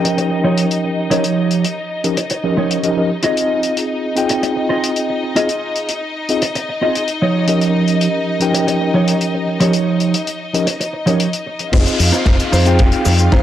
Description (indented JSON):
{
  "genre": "nu-disco, nu disco",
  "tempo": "113 BPM",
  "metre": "4/4",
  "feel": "straight",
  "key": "F minor",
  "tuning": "A4 = 442 Hz",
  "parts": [
    { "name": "mellow tine electric piano", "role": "accompaniment", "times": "0.0-13.4 s", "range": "F3 to G5", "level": "-18 LUFS", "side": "left 1 dB", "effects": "medium stereo tremolo, low-pass filter, tape echo" },
    { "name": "rich studio string section", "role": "sustained chords", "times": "0.0-13.4 s", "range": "Eb4 to F5", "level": "-23 LUFS", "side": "left 2 dB", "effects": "sidechain pumping, low-pass filter" },
    { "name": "mellow electric guitar", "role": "riff", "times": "0.0-13.4 s", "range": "F3 to Eb5", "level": "-19 LUFS", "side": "right 3 dB", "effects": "analog chorus, low-pass filter" },
    { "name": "damped 70s drum kit", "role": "drums", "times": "0.1-13.4 s", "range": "cabasa, crash cymbal, hi-hat, snare drum", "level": "-22 LUFS", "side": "left 4 dB", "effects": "none" },
    { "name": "fingered electric bass with an envelope filter", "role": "bass", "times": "11.7-13.4 s", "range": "F1 to F2", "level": "-14 LUFS", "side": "equal", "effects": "sidechain pumping" },
    { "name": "kick drum", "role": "drums", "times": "11.7-13.4 s", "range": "none", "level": "-13 LUFS", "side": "equal", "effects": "none" },
    { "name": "downlifter", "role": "sound effects", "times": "11.7-13.4 s", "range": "none", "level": "-24 LUFS", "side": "equal", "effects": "none" }
  ],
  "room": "light reverb, studio ambience",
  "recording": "dry, gritty hardware recording, cassette tape",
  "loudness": "-14 LUFS",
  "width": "side -11 dB against mid",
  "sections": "0.0-11.7 A section; 11.7-13.4 B section",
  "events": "drop 11.7-13.4",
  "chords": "0.0 Eb7/F; 3.2 Fm7; 7.2 Eb7/F; 11.7 Fm7"
}